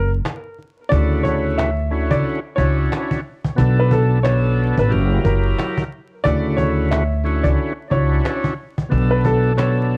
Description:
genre	hip hop, boom-bap hip-hop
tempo	90 BPM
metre	4/4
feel	swing 59% on 16ths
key	D major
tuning	A4 = 440 Hz
part	warm upright piano	melody	0.0-10.0 s	A4 to E5	-26 LUFS	equal	high-pass filter, low-pass filter, plate reverb, analog delay
part	upright bass	bass	0.0-10.0 s	F#1 to D2	-20 LUFS	equal	none
part	cajon	drums	0.3-10.0 s	none	-25 LUFS	equal	none
part	overdriven tonewheel organ	accompaniment	0.9-10.0 s	B2 to A#4	-25 LUFS	equal	slow rotary speaker, high-pass filter, low-pass filter, plate reverb
room	light reverb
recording	worn, warbling old tape, cassette tape, vinyl crackle, warbly pitch drift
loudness	-19 LUFS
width	mono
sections	0.0-10.0 A section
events	break 0.0-0.9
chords	0.0 N.C.; 0.9 Dmaj9; 3.6 Bm7; 4.9 F#7b9; 6.2 Dmaj9; 8.9 Bm7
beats	0.25 | 0.91 1.58 2.25 2.91 | 3.58 4.25 4.91 5.58 | 6.25 6.91 7.58 8.25 | 8.91 9.58

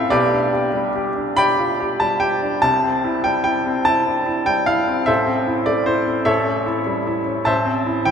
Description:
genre	classical, romantic character piece for solo piano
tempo	49 BPM (dotted quarters)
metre	6/8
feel	uneven beats, rubato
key	C major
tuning	A4 = 440 Hz
part	clear baby grand piano	solo	0.0-8.1 s	A1 to B5	-16 LUFS	equal	none
room	wet cathedral reverb, RT60 6.3 s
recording	in a vast, echoing space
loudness	-17 LUFS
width	side -7 dB against mid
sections	0.0-8.1 A section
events	none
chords	0.1 G/B; 2.6 C; 5.1 Am; 6.3 A7; 7.5 Am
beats	| 0.11 1.38 | 2.63 3.87 | 5.08 6.29 | 7.48

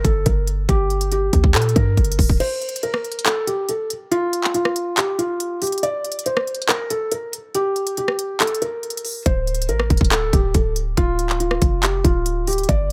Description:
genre	hip hop, trap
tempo	140 BPM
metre	4/4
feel	half-time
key	D minor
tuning	A4 = 440 Hz
part	felt-muted upright piano	melody	0.0-12.9 s	F4 to D5	-25 LUFS	equal	none
part	warm 808-style bass	bass	0.0-2.4, 9.3-12.9 s	D1 to Bb2	-23 LUFS	equal	none
part	trap drum kit	drums	0.0-12.9 s	crash cymbal, handclaps, hi-hat, kick drum, rim click	-22 LUFS	equal	none
room	little or no reverb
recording	none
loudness	-20 LUFS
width	mono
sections	0.0-12.9 A section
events	drum fill 2.0-2.4; break 2.4-9.3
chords	0.0 Gm; 2.4 N.C.; 9.3 Dm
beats	0.26 | 0.69 1.12 1.54 1.97 | 2.40 2.83 3.26 3.69 | 4.12 4.54 4.97 5.40 | 5.83 6.26 6.69 7.12 | 7.54 7.97 8.40 8.83 | 9.26 9.69 10.12 10.54 | 10.97 11.40 11.83 12.26 | 12.69

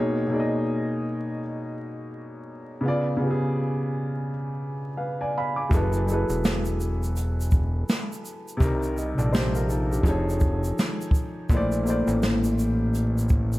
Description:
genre	lo-fi hip hop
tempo	83 BPM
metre	4/4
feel	swing 60% on 16ths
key	unclear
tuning	A4 = 440 Hz
part	dark upright piano	accompaniment	0.0-13.6 s	A#2 to D6	-26 LUFS	equal	cassette tape
part	fat analog bass	bass	5.7-13.6 s	E1 to C2	-26 LUFS	equal	none
part	jazz brush drum kit	drums	5.7-13.6 s	hi-hat, kick drum, shaker, snare drum	-24 LUFS	equal	none
room	light reverb, studio reverb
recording	vinyl crackle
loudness	-23 LUFS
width	side -18 dB against mid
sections	0.0-13.6 A section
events	none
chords	0.0 Bmaj13; 2.8 C#7b9; 5.7 F#m11; 8.6 Cm7; 10.0 F7alt; 11.5 A#maj9#11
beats	0.65 1.37 2.10 | 2.82 3.54 4.27 4.99 | 5.71 6.43 7.16 7.88 | 8.60 9.33 10.05 10.77 | 11.49 12.22 12.94

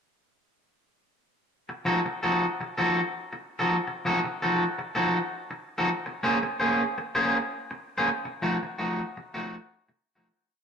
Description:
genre	blues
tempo	110 BPM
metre	4/4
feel	swing 64% on 8ths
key	unclear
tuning	A4 = 440 Hz
part	electric guitar at the edge of break-up	solo	1.7-10.3 s	F3 to C5	-25 LUFS	equal	spring reverb
room	moderate studio ambience, RT60 0.5 s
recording	rough rehearsal-room recording, tube saturation, lossy compression artefacts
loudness	-25 LUFS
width	side -6 dB against mid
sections	1.5-10.3 head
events	fade-out 8.1-10.3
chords	1.5 F7b9; 5.9 Bbm9; 8.1 F7b9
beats	| 1.52 2.07 2.62 3.17 | 3.71 4.26 4.81 5.36 | 5.90 6.45 7.00 7.54 | 8.09 8.63 9.18 9.73

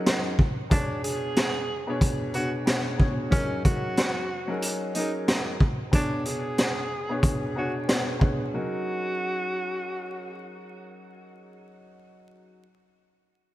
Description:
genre	hip hop, boom-bap hip-hop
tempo	92 BPM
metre	4/4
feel	swing 59% on 16ths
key	F# major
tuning	A4 = 440 Hz
part	warm upright piano	accompaniment	0.0-12.6 s	B2 to C#5	-32 LUFS	left 1 dB	cassette tape, high-pass filter, low-pass filter
part	raw garage drum kit	drums	0.1-8.4 s	hi-hat, kick drum, snare drum	-24 LUFS	equal	none
part	breathy tenor saxophone	melody	0.7-10.5 s	C#4 to G#4	-32 LUFS	right 1 dB	high-pass filter, low-pass filter, ping-pong delay
room	light reverb, small room ambience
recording	bright 1980s-style digital production, vinyl crackle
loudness	-24 LUFS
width	side -15 dB against mid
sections	0.0-8.5 A section; 8.5-11.1 B section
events	none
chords	0.0 F#6; 0.7 Bm6; 3.3 F#6; 5.9 Bm6; 8.5 F#6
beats	0.06 | 0.71 1.36 2.02 2.67 | 3.32 3.97 4.62 5.28 | 5.93 6.58 7.23 7.89 | 8.54 9.19 9.84 10.49

